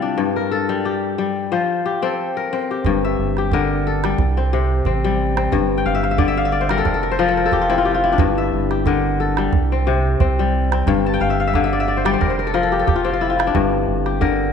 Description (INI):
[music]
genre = west african traditional, West African string and xylophone music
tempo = 90 BPM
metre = 4/4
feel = swing 55% on 16ths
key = G dorian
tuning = A4 = 441 Hz
[part]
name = kora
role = arpeggios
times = 0.0-14.5 s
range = G2 to A5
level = -18 LUFS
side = left 5 dB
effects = none
[part]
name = rubbery square bass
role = bass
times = 2.8-14.5 s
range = F1 to C2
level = -22 LUFS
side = right 2 dB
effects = none
[part]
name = calabash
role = percussion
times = 2.8-14.4 s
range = none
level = -21 LUFS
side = right 6 dB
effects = none
[sound]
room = wet echo chamber reverb, RT60 2.0 s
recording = 1960s-style stereo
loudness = -16 LUFS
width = side -7 dB against mid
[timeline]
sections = 0.0-2.8 A section; 2.8-14.5 B section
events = kora fill 5.8-8.2, 11.0-13.5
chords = 0.2 Gm; 1.5 F; 2.8 Gm; 4.2 C5; 5.5 G5; 6.9 F5; 8.2 Gm; 9.5 C5; 10.9 G5; 12.2 F5; 13.5 Gm